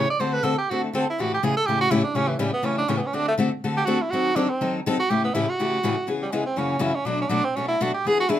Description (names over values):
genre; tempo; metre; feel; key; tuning
jazz; 245 BPM; 4/4; swing 57% on 8ths; A mixolydian; A4 = 440 Hz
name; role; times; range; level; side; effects
bright tenor saxophone; melody; 0.0-8.4 s; E3 to D5; -24 LUFS; right 3 dB; none
picked steel-string acoustic guitar; accompaniment; 0.0-8.4 s; F#2 to A4; -24 LUFS; left 3 dB; none
room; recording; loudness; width
moderate club reverb, RT60 0.6 s; minimal, uncompressed stereo recording; -21 LUFS; side -11 dB against mid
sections
0.0-8.4 A section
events
tenor saxophone solo 0.0-8.4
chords
0.2 D7; 1.2 A7; 3.1 D7; 4.1 D#dim7; 5.1 A7; 6.1 C#m7; 6.6 F#7; 7.1 Bm7